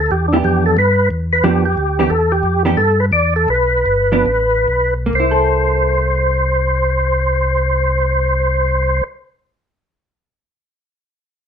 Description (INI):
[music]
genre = soul jazz organ trio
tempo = 126-181 BPM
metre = 4/4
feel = swing 64% on 8ths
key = C mixolydian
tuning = A4 = 439 Hz
[part]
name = overdriven tonewheel organ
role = melody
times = 0.0-9.0 s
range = D4 to D5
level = -15 LUFS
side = equal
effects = slow rotary speaker, chorus vibrato
[part]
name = mellow tonewheel organ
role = bass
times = 0.0-9.0 s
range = G1 to G2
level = -18 LUFS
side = equal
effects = slow rotary speaker
[part]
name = vintage hollow-body jazz guitar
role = accompaniment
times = 0.3-9.2 s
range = E3 to A4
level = -18 LUFS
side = right 2 dB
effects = none
[sound]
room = moderate studio reverb, RT60 0.6 s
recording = dark, warm production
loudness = -13 LUFS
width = side -8 dB against mid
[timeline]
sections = 0.0-5.1 A section; 5.1-8.9 B section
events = slowing down 2.1-5.1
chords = 0.0 Em7; 3.5 G; 5.1 C6